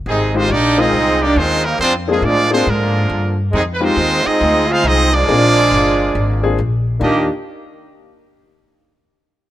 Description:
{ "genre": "jazz, big band swing", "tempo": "138 BPM", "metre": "4/4", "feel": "swing 66% on 8ths", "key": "Eb major", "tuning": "A4 = 440 Hz", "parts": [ { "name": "upright bass", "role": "bass", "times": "0.0-7.3 s", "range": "G1 to A2", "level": "-19 LUFS", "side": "left 1 dB", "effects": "none" }, { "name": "bright trumpet section", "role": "melody", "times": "0.1-7.3 s", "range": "G3 to F5", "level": "-17 LUFS", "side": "right 1 dB", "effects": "none" }, { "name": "brilliant trombone section", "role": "second line", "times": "0.1-7.3 s", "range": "C3 to G4", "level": "-18 LUFS", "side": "right 2 dB", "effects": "none" }, { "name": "warm grand piano", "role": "accompaniment", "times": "0.3-7.3 s", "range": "Ab3 to Bb4", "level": "-20 LUFS", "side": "left 4 dB", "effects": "none" } ], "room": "light reverb", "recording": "rough home demo mix", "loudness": "-12 LUFS", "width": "side -13 dB against mid", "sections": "0.1-7.0 A section; 7.0-8.8 B section", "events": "none", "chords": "0.1 Fm7; 1.8 Bb7; 3.5 Fm7; 5.3 Bb7; 7.0 Ebmaj7" }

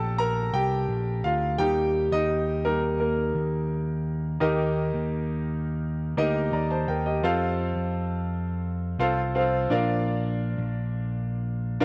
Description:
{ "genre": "piano-driven pop", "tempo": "85 BPM", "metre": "4/4", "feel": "straight", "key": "unclear", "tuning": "A4 = 440 Hz", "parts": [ { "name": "clear concert grand piano", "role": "accompaniment", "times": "0.0-11.8 s", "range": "Bb2 to Bb5", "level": "-29 LUFS", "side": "equal", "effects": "none" }, { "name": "picked electric bass", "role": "bass", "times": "0.0-11.8 s", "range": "Bb1 to F2", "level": "-30 LUFS", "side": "equal", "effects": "none" } ], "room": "moderate lush hall reverb, RT60 2.3 s", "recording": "worn, warbling old tape, cassette tape, warbly pitch drift", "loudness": "-26 LUFS", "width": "mono", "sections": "0.0-4.4 A section; 4.4-11.8 A section", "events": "grand piano solo 0.0-4.4", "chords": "0.0 Bb; 1.6 Eb; 7.2 F; 9.7 Bb" }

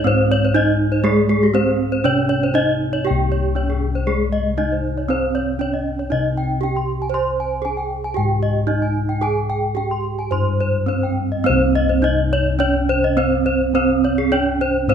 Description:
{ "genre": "Balinese gamelan", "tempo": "105-122 BPM", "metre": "4/4", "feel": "straight", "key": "C pelog", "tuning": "A4 = 441 Hz", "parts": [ { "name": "gamelan-type bronze metallophone", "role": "melody", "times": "0.0-14.9 s", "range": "Ab3 to C5", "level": "-21 LUFS", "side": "right 6 dB", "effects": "none" }, { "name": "gamelan-type bronze metallophone", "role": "arpeggios", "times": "0.0-14.9 s", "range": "G4 to C6", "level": "-21 LUFS", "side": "left 2 dB", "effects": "none" }, { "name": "gamelan-type bossed gongs", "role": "bass", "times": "0.0-14.9 s", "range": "C2 to C5", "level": "-21 LUFS", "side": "left 2 dB", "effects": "none" } ], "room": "moderate recital hall reverb, RT60 1.4 s", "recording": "none", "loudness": "-16 LUFS", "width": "side -8 dB against mid", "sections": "0.0-3.1 A section; 3.1-11.5 B section; 11.5-14.9 C section", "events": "none", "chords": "none" }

